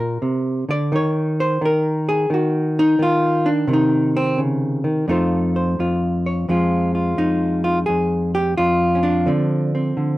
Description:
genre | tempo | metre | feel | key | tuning
solo jazz | 86 BPM | 4/4 | swing 67% on 8ths | F minor from 6.5 s | A4 = 440 Hz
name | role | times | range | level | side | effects
hollow-body jazz guitar | solo | 0.0-10.2 s | F2 to D5 | -17 LUFS | equal | none
room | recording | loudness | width
light reverb | dark, warm production | -17 LUFS | side -17 dB against mid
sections
0.0-6.5 A section; 6.5-10.2 B section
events
hollow-body jazz guitar solo 0.0-6.5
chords
0.0 Bb; 0.9 N.C.; 3.7 Cm; 5.1 F7; 6.5 Fm7; 9.3 Dm7

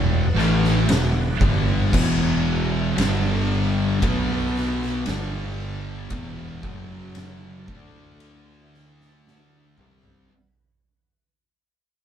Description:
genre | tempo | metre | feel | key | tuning
stoner and doom metal | 57 BPM | 4/4 | straight | E minor | A4 = 441 Hz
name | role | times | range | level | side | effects
phased string machine | sustained chords | 0.0-10.3 s | D3 to B4 | -35 LUFS | right 1 dB | ensemble chorus, phaser
thick fuzz guitar | riff | 0.0-10.3 s | E2 to D4 | -26 LUFS | left 5 dB | distortion
thick fuzz guitar | riff | 0.0-10.3 s | E2 to D4 | -28 LUFS | right 5 dB | distortion
thick fuzz guitar | riff | 0.0-10.3 s | E2 to D4 | -29 LUFS | right 1 dB | distortion
growling fingered electric bass | bass | 0.0-10.3 s | E1 to D2 | -26 LUFS | equal | overdrive
oversized low-tuned drum kit | drums | 0.4-10.3 s | crash cymbal, kick drum, ride cymbal, snare drum, toms | -26 LUFS | equal | none
room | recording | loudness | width
light reverb | band playing live in one room | -19 LUFS | side -9 dB against mid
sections
0.0-10.3 A section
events
fade-out 0.0-10.3; drum fill 9.3-10.3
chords
0.0 Em; 3.0 G5; 4.0 B5; 5.1 G5; 6.1 E5; 6.6 F#5; 7.7 D5; 9.8 Em

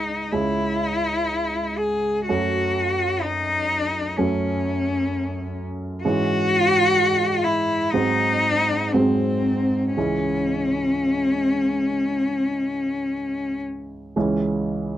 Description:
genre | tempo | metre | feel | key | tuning
classical, romantic duo for cello and grand piano | 56-65 BPM | 4/4 | rubato | C# minor | A4 = 440 Hz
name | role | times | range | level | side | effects
rich cello | melody | 0.0-13.6 s | B#3 to G#4 | -21 LUFS | left 2 dB | none
warm grand piano | accompaniment | 0.0-15.0 s | C#2 to C#4 | -25 LUFS | right 2 dB | none
room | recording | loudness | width
light reverb | dark, warm production | -20 LUFS | side -12 dB against mid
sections
0.0-14.2 A section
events
none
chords
0.0 C#m; 2.3 F#m; 6.0 C#m/G#; 7.9 G#7; 10.0 C#m

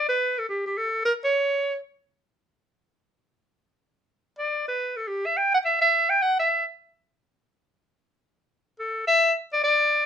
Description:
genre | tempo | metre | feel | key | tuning
jazz | free time | none | none | G major | A4 = 445 Hz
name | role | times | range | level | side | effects
breathy clarinet | solo | 0.0-1.8, 4.4-6.6, 8.8-10.1 s | G4 to G5 | -21 LUFS | equal | none
room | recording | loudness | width
moderate studio reverb, RT60 0.6 s | minimal, uncompressed stereo recording | -21 LUFS | side -8 dB against mid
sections
0.0-9.0 A section; 9.0-10.1 B section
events
none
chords
none

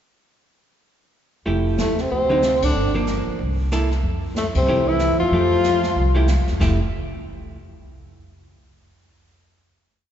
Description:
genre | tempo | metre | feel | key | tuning
jazz, small-group swing and bop | 187 BPM | 4/4 | swing 61% on 8ths | F major | A4 = 440 Hz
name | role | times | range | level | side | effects
vintage hollow-body jazz guitar | accompaniment | 1.5-6.8 s | D3 to A4 | -26 LUFS | right 2 dB | none
upright bass | bass | 1.5-6.8 s | F1 to Gb2 | -23 LUFS | equal | none
jazz brush drum kit | drums | 1.5-6.8 s | brushed snare drum, crash cymbal, hi-hat, kick drum, ride cymbal, snare drum | -28 LUFS | equal | none
breathy tenor saxophone | melody | 1.8-6.2 s | A3 to F4 | -21 LUFS | left 2 dB | none
breathy trombone | second line | 1.8-6.2 s | A2 to F3 | -28 LUFS | right 1 dB | none
room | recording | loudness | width
wet church reverb, RT60 2.9 s | recorded in a church or concert hall, nothing above 7.8 kHz | -17 LUFS | side -9 dB against mid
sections
1.5-6.6 A section; 6.6-7.9 final chord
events
band accent 2.6, 4.5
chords
1.5 Fmaj9; 2.1 D7b9; 2.8 Gm7; 3.4 C6; 4.0 Fmaj9

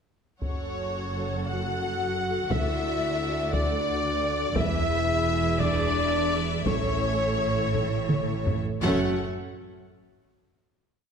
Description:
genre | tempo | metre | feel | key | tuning
cinematic, epic orchestral film score | 57 BPM (dotted quarters) | 6/8 | straight | F# minor | A4 = 440 Hz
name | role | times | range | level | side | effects
clear symphonic violin section | melody | 0.4-9.2 s | C#5 to F#5 | -33 LUFS | left 3 dB | none
clear symphonic violin section | second line | 0.4-9.2 s | A4 to F#5 | -37 LUFS | left 4 dB | none
rich symphonic viola section | accompaniment | 0.4-9.2 s | C#4 to C#5 | -34 LUFS | right 1 dB | none
dark French horn section | sustained chords | 0.4-9.2 s | C#4 to F#4 | -32 LUFS | left 6 dB | none
clear trumpet | stabs | 0.4-9.2 s | A3 to F#5 | -31 LUFS | right 1 dB | none
rich symphonic cello section | bass | 0.4-9.2 s | D2 to A2 | -32 LUFS | right 3 dB | none
rich symphonic double bass section | bass | 0.4-9.2 s | E1 to D2 | -33 LUFS | right 3 dB | none
taiko ensemble | drums | 0.4-8.8 s | none | -29 LUFS | equal | none
room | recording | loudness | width
moderate scoring stage reverb, RT60 1.7 s | none | -24 LUFS | side -6 dB against mid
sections
0.4-8.8 theme; 8.8-11.0 final chord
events
drum fill 7.7-8.8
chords
0.4 F#m; 2.5 D; 4.6 E; 6.7 A; 8.8 F#m

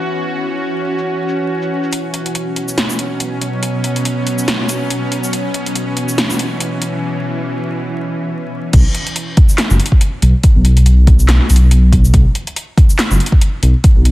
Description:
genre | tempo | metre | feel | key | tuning
deep dubstep | 141 BPM | 4/4 | swing 57% on 16ths, half-time | unclear | A4 = 444 Hz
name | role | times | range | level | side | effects
bowed-like drone | sustained chords | 0.0-8.7 s | B2 to F#4 | -19 LUFS | equal | built-in reverb
deep house drum kit | drums | 1.0-14.1 s | crash cymbal, handclaps, hi-hat, shaker, snare drum | -19 LUFS | equal | overdrive, low-pass filter on perc, low-pass filter on hats, low-pass filter on snare, low-pass filter on cymbals, low-pass filter on room
dark detuned saw bass | bass | 8.7-14.1 s | F#1 to B1 | -9 LUFS | equal | none
electronic kick drum | drums | 8.7-13.9 s | none | -10 LUFS | equal | overdrive
room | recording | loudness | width
little or no reverb | dense, heavily limited modern master, vinyl crackle, low-pass filter | -12 LUFS | side -17 dB against mid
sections
0.0-1.9 A section; 1.9-8.7 B section; 8.7-14.1 C section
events
filter sweep 0.0-1.9; build-up 1.9-8.7; break 7.0-8.7; drop 8.7-14.1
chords
0.0 E5; 1.9 Bsus2; 8.7 B5

